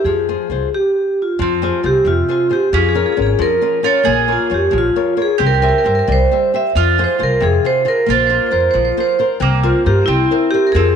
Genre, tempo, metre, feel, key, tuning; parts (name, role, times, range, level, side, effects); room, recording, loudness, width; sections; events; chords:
italian folk, Italian serenade; 90 BPM (dotted quarters); 6/8; straight; F harmonic minor; A4 = 441 Hz
vibraphone with medium hard mallets; melody; 0.0-11.0 s; E4 to E5; -15 LUFS; right 1 dB
upright bass; bass; 0.0-11.0 s; Ab1 to G2; -18 LUFS; equal; transformer saturation
flamenco guitar; accompaniment; 0.1-11.0 s; C3 to E5; -21 LUFS; left 10 dB
mandolin; second line; 1.4-11.0 s; Bb3 to Ab4; -20 LUFS; right 9 dB
moderate echo chamber reverb, RT60 2.0 s; 1960s-style stereo with parts hard left and right; -13 LUFS; side -7 dB against mid
0.0-1.4 A section; 1.4-11.0 A section
0.1 Fm; 2.7 Db6; 4.1 Bbm; 5.4 C; 6.7 Fm; 8.1 Bbsus2; 9.4 C7sus4; 10.1 C7